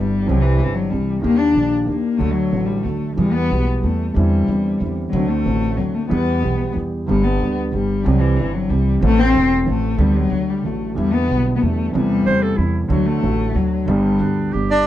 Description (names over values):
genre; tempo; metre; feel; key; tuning
tango; 185 BPM; 3/4; rubato; G major; A4 = 445 Hz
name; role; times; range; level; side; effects
dark cello; second line; 0.0-14.5 s; E3 to D4; -20 LUFS; left 5 dB; none
warm concert grand piano; accompaniment; 0.0-14.9 s; E1 to A4; -21 LUFS; right 3 dB; none
upright bass; bass; 0.0-14.9 s; E1 to E2; -22 LUFS; right 1 dB; none
clear clarinet; second line; 12.3-14.9 s; D4 to C5; -23 LUFS; right 4 dB; none
bandoneon; melody; 14.7-14.9 s; D4; -14 LUFS; right 1 dB; none
room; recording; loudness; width
moderate studio ambience, RT60 0.5 s; dark, warm production; -16 LUFS; side -13 dB against mid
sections
0.0-14.9 A section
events
cello solo 0.0-14.9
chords
0.3 C; 1.2 Ebmaj7; 2.2 D; 3.2 Em; 4.2 Cadd9/E; 5.1 D7; 6.1 Em; 7.1 G; 8.1 C; 9.0 Am; 10.0 G/D; 10.3 D; 11.0 Em7; 11.9 Amadd9/E; 12.9 D; 13.9 G